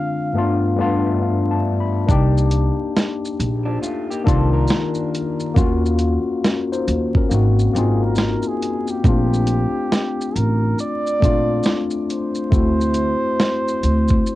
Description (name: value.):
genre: lo-fi hip hop.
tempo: 69 BPM.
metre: 4/4.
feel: swing 63% on 16ths.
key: unclear.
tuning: A4 = 441 Hz.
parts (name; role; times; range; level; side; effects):
breathy flugelhorn; melody; 0.0-1.6, 7.8-14.4 s; G4 to F5; -25 LUFS; right 2 dB; cassette tape.
barky tine electric piano; accompaniment; 0.0-14.4 s; G2 to B5; -21 LUFS; left 3 dB; medium stereo tremolo, cassette tape.
upright bass; bass; 2.1-14.2 s; Ab1 to Eb2; -18 LUFS; right 1 dB; none.
dusty soul sampler-style drum kit; drums; 2.1-14.4 s; hi-hat, kick drum, shaker, snare drum; -19 LUFS; equal; none.
electric guitar through a small old amp; second line; 3.7-5.5 s; F3 to Bb4; -30 LUFS; right 1 dB; cassette tape, tape echo.
room: moderate booth ambience, RT60 0.2 s.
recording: home recording on cassette, vinyl crackle, nothing above 10.9 kHz.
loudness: -16 LUFS.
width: side -16 dB against mid.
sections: 0.0-14.4 A section.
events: tine electric piano fill 0.3-2.1.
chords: 0.3 G7; 2.1 Cm7; 5.6 Ebm7; 7.3 Ab9; 9.0 Bbmaj9; 12.5 D7.